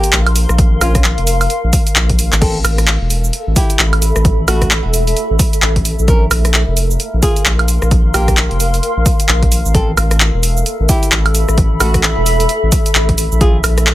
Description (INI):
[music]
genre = UK garage, two-step garage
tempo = 131 BPM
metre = 4/4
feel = swing 60% on 16ths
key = unclear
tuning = A4 = 438 Hz
[part]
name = flamenco guitar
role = melody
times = 0.0-13.6 s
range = A3 to Bb4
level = -22 LUFS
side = equal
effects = digital delay
[part]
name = punchy analog drum machine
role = drums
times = 0.0-13.9 s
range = cabasa, crash cymbal, handclaps, hi-hat, rim click, woodblock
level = -16 LUFS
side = right 1 dB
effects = overdrive
[part]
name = granular cloud pad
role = texture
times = 0.0-13.9 s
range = A4 to C6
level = -21 LUFS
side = left 1 dB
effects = built-in reverb, sidechain pumping
[part]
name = saturated sub bass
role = bass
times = 0.1-13.9 s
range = E1 to Bb1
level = -14 LUFS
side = equal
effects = none
[part]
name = electronic kick drum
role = drums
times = 0.6-13.5 s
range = none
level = -15 LUFS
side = equal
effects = overdrive
[sound]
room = little or no reverb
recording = none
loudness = -11 LUFS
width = side -15 dB against mid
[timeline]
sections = 0.0-13.9 A section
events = drum fill 2.0-2.4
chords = 0.0 Bbsus2; 2.4 Asus2; 6.1 Bbsus2; 9.7 Asus2; 13.4 Bb7sus2